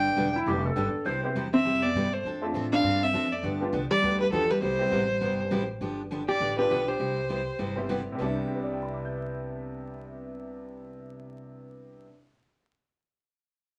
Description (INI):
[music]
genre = country, western swing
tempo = 202 BPM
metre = 4/4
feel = swing 61% on 8ths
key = C major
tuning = A4 = 440 Hz
[part]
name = rich fiddle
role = melody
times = 0.0-7.9 s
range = A4 to G5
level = -30 LUFS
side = equal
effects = none
[part]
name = hollow-body jazz guitar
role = second line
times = 0.0-7.9 s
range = F3 to G4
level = -31 LUFS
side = equal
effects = none
[part]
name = picked steel-string acoustic guitar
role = accompaniment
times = 0.0-12.1 s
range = C3 to A4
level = -36 LUFS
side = equal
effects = none
[part]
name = upright bass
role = bass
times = 0.0-12.0 s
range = E1 to A2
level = -38 LUFS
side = equal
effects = none
[part]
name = clean lap steel guitar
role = second line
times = 0.4-1.4 s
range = E4 to C5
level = -32 LUFS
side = equal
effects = none
[part]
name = bright upright piano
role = accompaniment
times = 0.8-12.3 s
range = C3 to G6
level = -37 LUFS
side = equal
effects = none
[sound]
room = wet studio ambience, RT60 0.5 s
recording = vinyl crackle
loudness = -28 LUFS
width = mono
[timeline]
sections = 0.0-5.8 A section; 5.8-8.2 B section; 8.2-10.6 C section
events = none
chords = 0.0 G; 1.1 Cmaj7; 2.2 F6; 3.4 G7; 4.6 Cmaj7; 5.8 G7; 7.0 Cmaj7